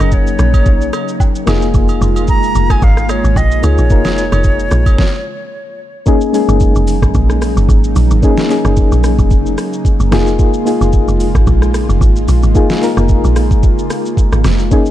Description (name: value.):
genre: amapiano.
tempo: 111 BPM.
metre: 4/4.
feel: swing 55% on 16ths.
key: Db major.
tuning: A4 = 442 Hz.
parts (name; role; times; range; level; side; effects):
bright concert flute; melody; 0.0-5.8 s; Db5 to Bb5; -21 LUFS; equal; digital delay.
soft electric-piano-like synth keys; accompaniment; 0.0-14.9 s; Ab3 to Bb4; -17 LUFS; left 4 dB; chorus, tremolo.
airy breathy pad; sustained chords; 0.0-14.9 s; Db3 to F4; -21 LUFS; right 2 dB; chorus, sidechain pumping.
woody log drum bass; bass; 0.0-14.7 s; F1 to Db2; -13 LUFS; equal; none.
smooth R&B drum kit; drums; 0.0-14.9 s; hi-hat, kick drum, rim click, shaker, snare drum; -14 LUFS; equal; none.
agogo bells and woodblock; percussion; 0.0-5.0 s; none; -28 LUFS; right 7 dB; none.
room: little or no reverb.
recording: dark, warm production.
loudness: -10 LUFS.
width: side -13 dB against mid.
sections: 0.0-6.1 A section; 6.1-14.9 B section.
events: stop 5.0-6.1; drop 6.1-14.9.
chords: 0.0 Gb6; 1.5 Db6/F; 6.1 Gb6; 10.1 Db6/F.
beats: 0.12 0.66 1.20 | 1.74 2.28 2.82 3.37 | 3.90 4.45 4.99 5.53 | 6.07 6.61 7.15 7.69 | 8.23 8.77 9.31 9.85 | 10.39 10.93 11.47 12.01 | 12.55 13.10 13.63 14.18 | 14.72.